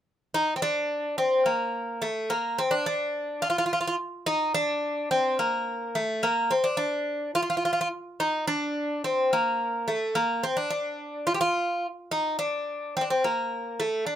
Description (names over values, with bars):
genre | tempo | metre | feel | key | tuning
turkish | 214 BPM (eighths) | 7/8 | straight | D makam kurdi | A4 = 439 Hz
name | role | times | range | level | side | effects
Greek bouzouki | solo | 0.3-14.2 s | A3 to G4 | -25 LUFS | equal | none
room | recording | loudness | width
light reverb | close, detailed microphones | -25 LUFS | side -10 dB against mid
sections
0.3-14.2 A section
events
none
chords
none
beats
| 0.35 0.63 0.91 1.19 1.47 1.75 2.03 | 2.31 2.59 2.87 3.15 3.43 3.71 3.99 | 4.27 4.55 4.83 5.11 5.39 5.67 5.95 | 6.23 6.51 6.79 7.07 7.35 7.63 7.91 | 8.19 8.47 8.75 9.03 9.31 9.59 9.87 | 10.15 10.43 10.71 10.98 11.26 11.54 11.82 | 12.10 12.38 12.66 12.94 13.22 13.50 13.78 | 14.06